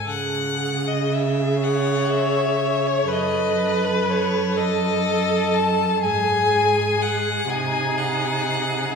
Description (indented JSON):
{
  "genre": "classical, slow romantic movement for string quartet",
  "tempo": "41 BPM (dotted quarters)",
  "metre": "6/8",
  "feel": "rubato",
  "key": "C# minor",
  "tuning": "A4 = 441 Hz",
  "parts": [
    { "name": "clear violin", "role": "melody", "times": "0.0-8.9 s", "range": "B4 to A5", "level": "-23 LUFS", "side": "left 5 dB", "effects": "none" },
    { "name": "warm violin", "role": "second line", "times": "0.0-9.0 s", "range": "G#4 to C#5", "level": "-26 LUFS", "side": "left 3 dB", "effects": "none" },
    { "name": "warm viola", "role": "accompaniment", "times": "0.1-9.0 s", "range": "D#4 to A4", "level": "-25 LUFS", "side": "right 3 dB", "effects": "none" },
    { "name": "rich cello", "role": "bass", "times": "0.1-8.9 s", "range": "F#2 to C#3", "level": "-25 LUFS", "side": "right 3 dB", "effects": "none" }
  ],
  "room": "wet concert hall reverb, RT60 2.4 s",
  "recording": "recorded in a church or concert hall",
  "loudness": "-19 LUFS",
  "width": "side -5 dB against mid",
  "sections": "0.1-9.0 A section",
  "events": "none",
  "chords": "0.1 C#5; 3.1 D#dim/F#; 6.0 G#7",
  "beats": "| 0.08 1.61 | 3.09 4.57 | 6.03 7.49 | 8.93"
}